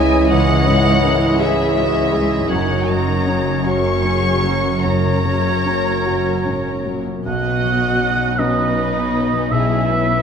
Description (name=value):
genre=cinematic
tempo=48-56 BPM (dotted quarters)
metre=6/8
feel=rubato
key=unclear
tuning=A4 = 437 Hz
part: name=muted symphonic violin section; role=melody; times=0.0-10.2 s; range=C#4 to C#6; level=-25 LUFS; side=left 3 dB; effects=none
part: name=dark clarinet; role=second line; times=0.0-6.9 s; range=E4 to F#4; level=-25 LUFS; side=right 2 dB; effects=none
part: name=muted symphonic violin section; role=second line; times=0.0-10.2 s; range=F#4 to E5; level=-25 LUFS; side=left 4 dB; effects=none
part: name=warm oboe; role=second line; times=0.0-10.2 s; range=C#5 to F#5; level=-22 LUFS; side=right 2 dB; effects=none
part: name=clear grand piano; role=accompaniment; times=0.0-10.2 s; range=B1 to G#4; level=-24 LUFS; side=left 1 dB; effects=none
part: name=muted symphonic viola section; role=accompaniment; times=0.0-10.2 s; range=E3 to F#4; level=-26 LUFS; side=right 2 dB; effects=none
part: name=mellow French horn section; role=sustained chords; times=0.0-6.9 s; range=E3 to C#4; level=-25 LUFS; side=left 4 dB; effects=none
part: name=concert harp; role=arpeggios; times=0.0-10.2 s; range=F#2 to G#5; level=-25 LUFS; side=left 6 dB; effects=none
part: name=muted symphonic cello section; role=bass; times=0.0-10.2 s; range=C#2 to B2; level=-24 LUFS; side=right 3 dB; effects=none
part: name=muted symphonic double bass section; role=bass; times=0.0-10.2 s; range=F#1 to C#2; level=-24 LUFS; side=right 3 dB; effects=none
room=wet scoring stage reverb, RT60 2.0 s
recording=none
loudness=-15 LUFS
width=side -7 dB against mid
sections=0.0-7.3 A section; 7.3-10.2 B section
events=none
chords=0.0 C#madd9; 2.5 F#; 7.3 Badd9; 9.5 C#m/B